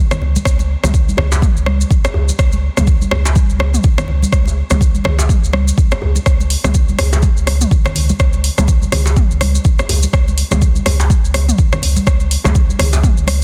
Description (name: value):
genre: afro house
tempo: 124 BPM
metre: 4/4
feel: swing 58% on 16ths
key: unclear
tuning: A4 = 440 Hz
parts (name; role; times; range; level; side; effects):
- warm sub bass; bass; 0.0-13.4 s; B1 to C#2; -18 LUFS; equal; sidechain pumping
- deep house drum kit; drums; 0.1-13.4 s; hi-hat, rim click, toms; -23 LUFS; equal; overdrive
- congas; percussion; 0.1-13.4 s; none; -25 LUFS; equal; none
- maracas; percussion; 0.1-13.3 s; none; -28 LUFS; equal; none
- electronic kick drum; drums; 0.5-13.1 s; none; -15 LUFS; equal; none
- djembe; percussion; 0.8-13.0 s; none; -26 LUFS; equal; none
room: little or no reverb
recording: dense, heavily limited modern master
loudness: -14 LUFS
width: mono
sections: 0.0-13.4 A section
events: none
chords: none